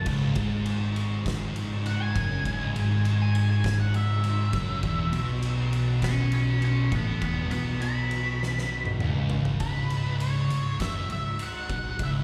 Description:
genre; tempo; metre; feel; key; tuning
stoner and doom metal; 101 BPM; 4/4; straight; C# minor; A4 = 438 Hz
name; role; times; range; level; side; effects
octave-fuzz lead guitar; melody; 0.0-12.1 s; B4 to C#6; -35 LUFS; equal; distortion, slapback echo, tape echo
phased string machine; sustained chords; 0.0-12.2 s; C#3 to F#4; -46 LUFS; equal; none
distorted electric guitar; riff; 0.0-9.6 s; C#2 to B2; -37 LUFS; equal; distortion
thick fuzz guitar; riff; 0.0-12.2 s; C#2 to B2; -36 LUFS; equal; none
thick fuzz guitar; riff; 0.0-12.2 s; C#2 to B2; -32 LUFS; equal; distortion
picked electric bass; bass; 0.1-12.2 s; C#1 to B1; -32 LUFS; equal; tube saturation
oversized low-tuned drum kit; drums; 0.1-12.1 s; crash cymbal, kick drum, ride cymbal, snare drum, toms; -35 LUFS; equal; none
room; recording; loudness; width
small room ambience; live gig heard through the venue's PA, recital hall reverb; -27 LUFS; mono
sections
0.0-9.6 A section; 9.6-12.2 B section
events
lead electric guitar solo 0.0-9.6; drum fill 8.4-9.6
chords
0.1 C#5; 4.8 E5; 9.6 C#5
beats
| 0.06 0.66 1.25 1.85 | 2.44 3.04 3.64 4.23 | 4.83 5.42 6.02 6.62 | 7.21 7.81 8.41 9.00 | 9.60 10.20 10.79 11.39 | 11.99

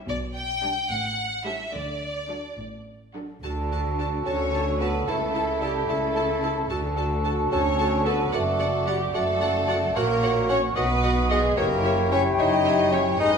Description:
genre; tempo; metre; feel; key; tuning
cinematic, playful, whimsical film cue; 74 BPM (dotted quarters); 6/8; straight; D major; A4 = 438 Hz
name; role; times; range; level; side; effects
rich studio violin section; second line; 0.0-13.4 s; D4 to D#5; -33 LUFS; left 1 dB; none
rich studio violin section; melody; 0.1-13.4 s; D5 to A5; -33 LUFS; left 1 dB; none
rich studio cello section; bass; 0.1-13.4 s; F#2 to D3; -33 LUFS; right 1 dB; none
warm studio double bass section; bass; 0.1-13.4 s; F#1 to D2; -30 LUFS; right 1 dB; none
warm studio viola section; accompaniment; 0.6-13.4 s; F#3 to D#5; -33 LUFS; right 1 dB; none
clear clarinet; second line; 3.4-13.4 s; D#4 to F#4; -34 LUFS; left 1 dB; none
mellow cor anglais; second line; 3.4-13.4 s; A4 to D#5; -33 LUFS; right 2 dB; none
mellow hollow silver concert flute; second line; 3.4-13.4 s; F#5 to A5; -31 LUFS; left 2 dB; none
mellow French horn section; sustained chords; 3.4-13.4 s; D#4 to D5; -30 LUFS; left 2 dB; none
warm bassoon; accompaniment; 4.3-13.3 s; G3 to D#4; -25 LUFS; right 1 dB; none
room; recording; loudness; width
wet stone room reverb, RT60 1.4 s; minimal, uncompressed stereo recording; -22 LUFS; side -6 dB against mid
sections
0.0-3.4 A section; 3.4-13.4 B section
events
none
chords
0.1 G/B; 0.9 A7; 1.7 D; 5.1 A/C#; 6.7 D; 8.3 D/F#; 10.0 F#/A#; 10.8 B; 11.6 F#7b9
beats
| 0.09 0.90 | 1.74 2.59 | 3.44 4.26 | 5.07 5.89 | 6.70 7.52 | 8.33 9.14 | 9.96 10.76 | 11.57 12.38 | 13.19

